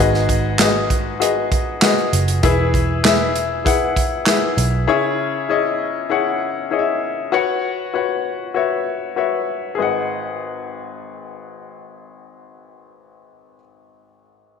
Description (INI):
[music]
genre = piano-driven pop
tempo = 98 BPM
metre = 4/4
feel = straight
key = G# minor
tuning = A4 = 440 Hz
[part]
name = bright upright piano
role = accompaniment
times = 0.0-14.6 s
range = G#1 to F#5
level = -19 LUFS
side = left 5 dB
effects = none
[part]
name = vintage muted picked electric bass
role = bass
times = 0.0-4.9 s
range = E1 to B1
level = -21 LUFS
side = right 2 dB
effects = none
[part]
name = natural country drum kit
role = drums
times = 0.1-4.7 s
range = handclaps, hi-hat, kick drum, snare drum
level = -19 LUFS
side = right 2 dB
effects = none
[sound]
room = wet echo chamber reverb, RT60 1.8 s, studio reverb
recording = 1960s-style stereo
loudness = -16 LUFS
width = side -6 dB against mid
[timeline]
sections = 0.0-9.8 A section; 9.8-12.2 B section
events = none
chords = 0.0 G#m7; 2.4 E; 4.9 C#m; 7.3 F#sus4; 9.8 G#m7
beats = 0.60 1.21 1.82 | 2.43 3.04 3.66 4.27 | 4.88 5.49 6.11 6.72 | 7.33 7.94 8.56 9.17 | 9.78 10.40 11.01 11.62